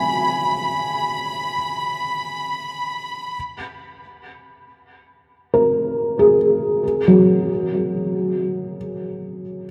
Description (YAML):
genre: ambient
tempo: free time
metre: none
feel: none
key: unclear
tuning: A4 = 440 Hz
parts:
  - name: felt-muted upright piano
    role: arpeggios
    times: 0.0-9.7 s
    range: F#3 to G#5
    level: -20 LUFS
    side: equal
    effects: diffuse ambient delay
  - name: clear symphonic violin section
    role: texture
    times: 0.0-3.4 s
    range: B5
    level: -26 LUFS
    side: equal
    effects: none
room: wet cathedral reverb, RT60 5.1 s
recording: none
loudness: -20 LUFS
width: mono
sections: 0.0-3.3 A section; 3.3-9.7 B section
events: none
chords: 0.0 B5; 3.3 G#sus2; 6.8 F#sus2